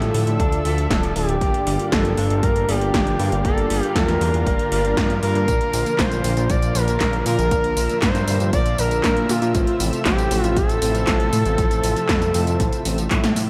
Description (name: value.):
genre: synthwave.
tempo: 118 BPM.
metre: 4/4.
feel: straight.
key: unclear.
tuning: A4 = 439 Hz.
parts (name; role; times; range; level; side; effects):
expressive portamento lead; melody; 0.0-13.1 s; F4 to D5; -25 LUFS; equal; chorus, delay, shimmer reverb, slapback echo.
analog string pad; sustained chords; 0.0-13.5 s; C3 to E5; -31 LUFS; equal; ensemble chorus, sidechain pumping, shimmer reverb.
semi-hollow electric guitar; arpeggios; 0.0-5.5 s; D3 to D4; -34 LUFS; equal; lush chorus, delay, shimmer reverb, slapback echo.
analog synth brass; stabs; 0.0-12.8 s; G2 to D5; -32 LUFS; equal; chorus, vintage 12-bit sampler grit, shimmer reverb, slapback echo.
fat analog bass; bass; 0.0-13.5 s; D1 to Bb2; -25 LUFS; equal; sidechain pumping.
80s electronic pad drums; drums; 0.0-13.5 s; handclaps, hi-hat, snare drum, tambourine; -28 LUFS; equal; slapback echo.
electronic kick drum; drums; 0.4-13.2 s; none; -26 LUFS; equal; none.
electric guitar at the edge of break-up; riff; 5.5-13.4 s; Bb2 to C4; -35 LUFS; equal; none.
room: moderate recital hall reverb, RT60 1.4 s.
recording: big arena sound.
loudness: -20 LUFS.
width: mono.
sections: 0.0-13.5 A section.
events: drum fill 13.1-13.5.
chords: 0.0 Dm; 1.4 Gm7; 5.5 Bb; 9.5 Fmaj7/A.